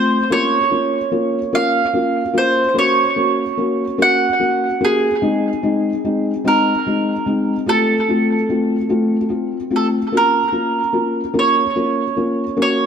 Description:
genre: pop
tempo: 49 BPM (dotted quarters)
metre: 6/8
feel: straight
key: Bb minor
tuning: A4 = 440 Hz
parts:
  - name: mandolin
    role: melody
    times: 0.0-12.9 s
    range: Ab4 to Gb5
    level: -18 LUFS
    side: right 3 dB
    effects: analog delay
  - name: felt-muted upright piano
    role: accompaniment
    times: 0.0-12.8 s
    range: Ab3 to Gb4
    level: -18 LUFS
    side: left 2 dB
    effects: analog delay
room: moderate echo chamber reverb, RT60 2.0 s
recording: echo-heavy mix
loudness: -15 LUFS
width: side -7 dB against mid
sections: 0.0-12.9 A section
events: none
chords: 0.3 Bbm; 2.8 Gb; 5.2 Ab; 7.7 F; 10.1 Bbm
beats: | 0.30 1.53 | 2.76 3.99 | 5.22 6.45 | 7.67 8.90 | 10.13 11.36 | 12.58

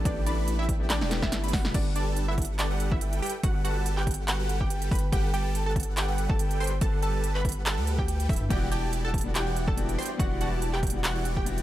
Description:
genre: future bass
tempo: 142 BPM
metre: 4/4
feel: swing 54% on 16ths, half-time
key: G major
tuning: A4 = 441 Hz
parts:
  - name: clear grand piano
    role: accompaniment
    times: 0.0-1.8, 8.5-11.6 s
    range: G3 to G4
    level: -37 LUFS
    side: left 5 dB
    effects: sidechain pumping, tape echo
  - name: shimmering ambient pad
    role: sustained chords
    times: 0.0-1.7 s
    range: G3 to D4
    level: -47 LUFS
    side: right 1 dB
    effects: none
  - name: saturated sub bass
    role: bass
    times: 0.0-11.6 s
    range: D1 to G2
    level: -29 LUFS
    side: equal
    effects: sidechain pumping
  - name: wide unison pluck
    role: melody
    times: 0.1-11.6 s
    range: D4 to C6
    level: -34 LUFS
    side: right 1 dB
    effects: sidechain pumping, tape echo
  - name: airy dreamy lead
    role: arpeggios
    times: 0.1-11.6 s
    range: F#5 to B5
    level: -41 LUFS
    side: equal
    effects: chorus, sidechain pumping
  - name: supersaw chords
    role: riff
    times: 0.1-11.6 s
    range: E3 to B5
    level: -35 LUFS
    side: equal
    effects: sidechain pumping
  - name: big-room dance drum kit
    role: drums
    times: 0.1-11.6 s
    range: crash cymbal, handclaps, hi-hat, snare drum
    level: -32 LUFS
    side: right 1 dB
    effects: overdrive
  - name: electronic kick drum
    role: drums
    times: 0.1-11.4 s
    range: none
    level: -29 LUFS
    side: equal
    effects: overdrive
room: digital ambience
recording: none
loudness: -25 LUFS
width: side -14 dB against mid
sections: 0.0-1.7 A section; 1.7-11.6 A section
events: drop 0.0-1.7, 1.7-11.6; drum fill 0.9-1.7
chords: 0.0 A9sus4; 1.7 Gmaj9; 8.5 Em9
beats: | 0.05 0.48 0.90 1.32 | 1.74 2.17 2.59 3.01 | 3.44 3.86 4.28 4.70 | 5.12 5.55 5.97 6.39 | 6.82 7.24 7.66 8.08 | 8.51 8.93 9.35 9.77 | 10.20 10.62 11.04 11.46

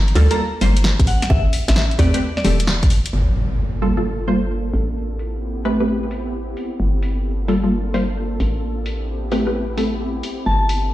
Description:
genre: UK garage, two-step garage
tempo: 131 BPM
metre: 4/4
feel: swing 67% on 16ths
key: unclear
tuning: A4 = 440 Hz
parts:
  - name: hollow knocking FM bass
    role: bass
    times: 0.0-10.9 s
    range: E1 to E2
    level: -20 LUFS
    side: equal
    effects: none
  - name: house drum kit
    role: drums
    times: 0.1-10.8 s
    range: hi-hat, snare drum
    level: -24 LUFS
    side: equal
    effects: low-pass filter on hats, low-pass filter on snare
  - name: punchy chord stab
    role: stabs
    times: 0.2-9.9 s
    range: G3 to C5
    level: -20 LUFS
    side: equal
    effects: chorus, tape echo
  - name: soft synth bell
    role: melody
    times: 0.3-2.5, 10.5-10.7 s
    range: D5 to Bb5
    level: -26 LUFS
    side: left 2 dB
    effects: chorus, ping-pong delay
  - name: electronic kick drum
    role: drums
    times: 1.0-2.9 s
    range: none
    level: -17 LUFS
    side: equal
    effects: none
  - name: ethereal airy pad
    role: sustained chords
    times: 3.7-10.9 s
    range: Bb3 to A4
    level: -28 LUFS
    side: equal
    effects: ensemble chorus, built-in reverb, sidechain pumping
  - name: impact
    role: sound effects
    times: 3.1-5.0 s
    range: none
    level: -24 LUFS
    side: equal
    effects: none
room: moderate studio reverb, RT60 0.6 s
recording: played on a big sound system in a bare room, stone room reverb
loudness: -17 LUFS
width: side -15 dB against mid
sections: 0.0-3.1 A section; 3.1-10.9 B section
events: band accent 2.7; impact 3.1-5.0; filter sweep on ambient pad 3.1-10.9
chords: 0.0 Gm9; 1.1 Am7; 3.1 Gm9; 4.7 Am9; 6.8 Gm9; 8.4 Am9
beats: 0.39 0.84 | 1.30 1.76 2.22 2.68 | 3.13 3.59 4.05 4.51 | 4.97 5.42 5.88 6.34 | 6.80 7.26 7.71 8.17 | 8.63 9.09 9.55 10.00 | 10.46 10.92

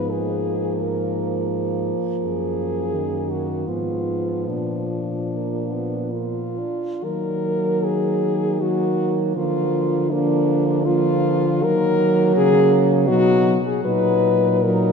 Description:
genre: classical, lyrical piece for horn quartet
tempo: 61-88 BPM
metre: 3/4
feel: rubato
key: Eb minor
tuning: A4 = 440 Hz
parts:
  - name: warm French horn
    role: melody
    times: 0.0-14.9 s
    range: D4 to Cb5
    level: -23 LUFS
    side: left 4 dB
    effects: none
  - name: mellow French horn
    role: second line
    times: 0.0-14.9 s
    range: Bb3 to Eb4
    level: -26 LUFS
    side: right 9 dB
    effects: none
  - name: dark French horn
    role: accompaniment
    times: 0.0-14.9 s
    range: Eb3 to Gb3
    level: -24 LUFS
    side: left 2 dB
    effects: none
  - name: dark French horn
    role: bass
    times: 0.0-14.9 s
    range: Gb2 to Eb3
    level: -25 LUFS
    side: right 3 dB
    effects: none
room: wet church reverb, RT60 3.5 s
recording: dark, warm production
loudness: -18 LUFS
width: side -6 dB against mid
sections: 0.0-7.0 A section; 7.0-14.9 B section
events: none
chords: 0.1 Bb5/Ab; 2.2 Ebm/Gb; 3.7 Fdim/Ab; 4.5 Bb; 7.0 Ebm; 9.4 Bb/D; 11.6 Ebm; 13.1 B; 13.9 Ebm/Bb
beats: | 0.11 0.79 1.50 | 2.23 2.94 3.67 | 4.48 5.32 6.12 | 7.04 7.85 8.62 | 9.37 10.12 10.86 | 11.64 12.36 13.09 | 13.85 14.64

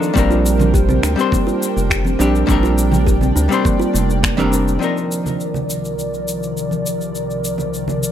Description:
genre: sunset chillout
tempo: 103 BPM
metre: 4/4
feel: straight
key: C minor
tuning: A4 = 439 Hz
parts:
  - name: archtop guitar, miked and amplified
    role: accompaniment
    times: 0.0-8.1 s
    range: F3 to C5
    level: -20 LUFS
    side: moving between left 4 dB and right 5 dB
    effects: auto-pan, ping-pong delay
  - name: airy breathy pad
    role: sustained chords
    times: 0.0-8.1 s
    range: C2 to G5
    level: -23 LUFS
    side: equal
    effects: chorus
  - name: electronic cabasa and finger snaps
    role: drums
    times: 0.0-8.1 s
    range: none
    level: -25 LUFS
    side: left 2 dB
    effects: none
  - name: kalimba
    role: arpeggios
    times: 0.2-4.6 s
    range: Bb3 to G4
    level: -22 LUFS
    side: right 2 dB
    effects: ping-pong delay
  - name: round analog bass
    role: bass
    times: 0.2-4.8 s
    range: F1 to D2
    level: -17 LUFS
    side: equal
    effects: none
  - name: electronic kick drum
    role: drums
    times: 0.2-4.4 s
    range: none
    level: -19 LUFS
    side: equal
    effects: none
  - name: congas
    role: percussion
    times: 0.6-8.0 s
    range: none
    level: -24 LUFS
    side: right 2 dB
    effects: none
room: light reverb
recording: none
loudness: -15 LUFS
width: side -10 dB against mid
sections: 0.0-4.8 A section; 4.8-8.1 B section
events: none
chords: 0.2 Bb69; 4.8 Cm11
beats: | 0.16 0.74 1.32 1.91 | 2.49 3.07 3.65 4.24 | 4.82 5.40 5.98 6.57 | 7.15 7.73

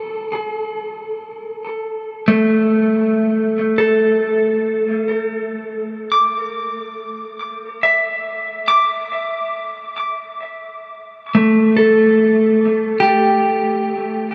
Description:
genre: ambient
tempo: 69 BPM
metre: 4/4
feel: straight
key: unclear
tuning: A4 = 440 Hz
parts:
  - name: clean electric guitar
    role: solo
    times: 0.0-14.3 s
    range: A3 to D6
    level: -18 LUFS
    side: equal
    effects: tape echo
room: wet huge ambient reverb, RT60 7.8 s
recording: none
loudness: -17 LUFS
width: mono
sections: 0.0-2.1 A section; 2.1-14.3 B section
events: none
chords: 0.0 N.C.; 2.1 A5; 9.0 D5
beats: 0.30 1.19 | 2.07 2.95 3.82 4.69 | 5.55 6.41 7.27 8.12 | 8.98 9.83 10.69 11.56 | 12.43 13.30 14.17

